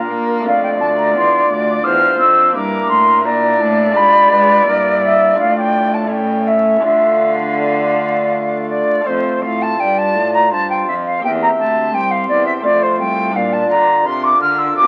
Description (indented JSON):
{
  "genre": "classical, baroque-style sonata movement with continuo",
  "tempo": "85 BPM",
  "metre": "3/4",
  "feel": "straight",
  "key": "D minor, F major from 9.1 s",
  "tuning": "A4 = 440 Hz",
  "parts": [
    { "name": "silver concert flute", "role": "melody", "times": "0.0-14.9 s", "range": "Bb4 to F6", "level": "-19 LUFS", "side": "equal", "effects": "none" },
    { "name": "chamber organ, cornet", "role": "accompaniment", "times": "0.0-14.9 s", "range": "C2 to G4", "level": "-24 LUFS", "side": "equal", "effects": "none" },
    { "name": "rich cello", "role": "bass", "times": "0.0-14.9 s", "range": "C2 to Bb3", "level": "-26 LUFS", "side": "equal", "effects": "none" },
    { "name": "mellow concert flute", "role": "second line", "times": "0.5-14.9 s", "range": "Bb4 to F6", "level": "-18 LUFS", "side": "equal", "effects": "none" }
  ],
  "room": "moderate studio reverb, RT60 0.9 s",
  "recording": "very old 78 rpm record, vinyl crackle",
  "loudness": "-15 LUFS",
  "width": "mono",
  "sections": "0.0-9.1 A section; 9.1-14.9 A section",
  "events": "none",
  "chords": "0.5 Dm; 2.5 Em7b5/G; 4.0 G#dim7; 4.7 Edim/G; 5.4 Dm/A; 6.1 A7; 6.8 Dm; 9.1 F; 11.2 C7; 12.6 F; 13.3 Bb"
}